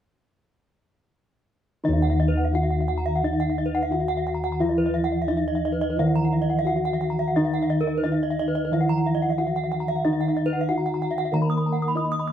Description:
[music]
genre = Balinese gamelan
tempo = 88 BPM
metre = 4/4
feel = uneven beats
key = Eb pelog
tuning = A4 = 440 Hz
[part]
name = gamelan-type bronze metallophone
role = accompaniment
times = 1.8-12.3 s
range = Eb3 to Bb3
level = -30 LUFS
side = left 2 dB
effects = none
[part]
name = gamelan-type bronze metallophone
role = arpeggios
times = 1.8-12.3 s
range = Cb5 to Eb6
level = -30 LUFS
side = left 2 dB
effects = none
[part]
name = gamelan-type bossed gongs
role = bass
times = 1.8-12.3 s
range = Eb2 to Fb4+35c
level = -25 LUFS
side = equal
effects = none
[part]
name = gamelan-type bronze metallophone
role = melody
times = 1.9-12.3 s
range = Eb4 to Eb5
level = -28 LUFS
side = equal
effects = none
[part]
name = gamelan-type bronze metallophone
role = arpeggios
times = 2.0-12.3 s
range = Bb4 to Eb6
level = -29 LUFS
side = right 5 dB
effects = none
[sound]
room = moderate studio reverb, RT60 0.6 s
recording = band playing live in one room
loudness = -21 LUFS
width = side -10 dB against mid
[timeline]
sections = 1.8-12.3 A section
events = none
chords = none

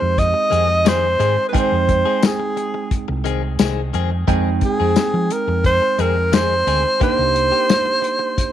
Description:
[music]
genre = straight-eighth soul blues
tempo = 88 BPM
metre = 4/4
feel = straight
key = unclear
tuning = A4 = 440 Hz
[part]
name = warm tenor saxophone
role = melody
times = 0.0-8.5 s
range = Ab4 to Eb5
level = -18 LUFS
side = equal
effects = none
[part]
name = bell-like tine electric piano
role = accompaniment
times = 0.0-8.5 s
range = Ab3 to G5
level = -25 LUFS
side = right 12 dB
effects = none
[part]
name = direct-recorded clean electric guitar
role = stabs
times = 0.0-8.2 s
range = Eb3 to Ab4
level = -27 LUFS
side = left 12 dB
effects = none
[part]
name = hollow-body short-scale fingered electric bass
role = bass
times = 0.0-7.5 s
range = C2 to F3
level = -21 LUFS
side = equal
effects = none
[part]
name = warm soul drum kit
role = drums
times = 0.2-8.5 s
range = hi-hat, kick drum, snare drum, tambourine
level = -19 LUFS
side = left 3 dB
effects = none
[sound]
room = moderate spring reverb, RT60 1.7 s, small room ambience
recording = 1960s-style stereo with parts hard left and right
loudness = -15 LUFS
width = side -11 dB against mid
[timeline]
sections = 0.0-8.5 A section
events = none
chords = 0.0 Fm7; 7.0 Cm7

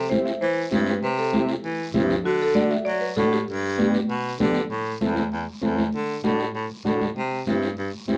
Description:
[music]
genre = latin, cumbia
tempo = 196 BPM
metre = 4/4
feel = straight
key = unclear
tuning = A4 = 442 Hz
[part]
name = buzzing marimba with medium hard mallets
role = melody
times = 0.0-4.4 s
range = F#4 to E5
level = -28 LUFS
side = equal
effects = none
[part]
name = breathy baritone saxophone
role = bass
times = 0.0-8.2 s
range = E2 to F#3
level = -29 LUFS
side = equal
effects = none
[part]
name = combo organ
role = accompaniment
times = 0.1-8.2 s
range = A3 to A4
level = -28 LUFS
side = equal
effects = none
[part]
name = congas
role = percussion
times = 0.1-8.2 s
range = none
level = -29 LUFS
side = equal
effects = none
[part]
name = guiro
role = percussion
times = 0.1-8.2 s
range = none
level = -43 LUFS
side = equal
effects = none
[sound]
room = wet small room reverb, RT60 0.5 s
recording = worn, warbling old tape, cassette tape, warbly pitch drift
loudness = -24 LUFS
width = mono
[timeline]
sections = 0.0-4.7 A section; 4.7-8.2 B section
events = none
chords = 0.0 C; 2.3 D; 3.5 G; 4.7 Am; 5.9 D; 7.2 C

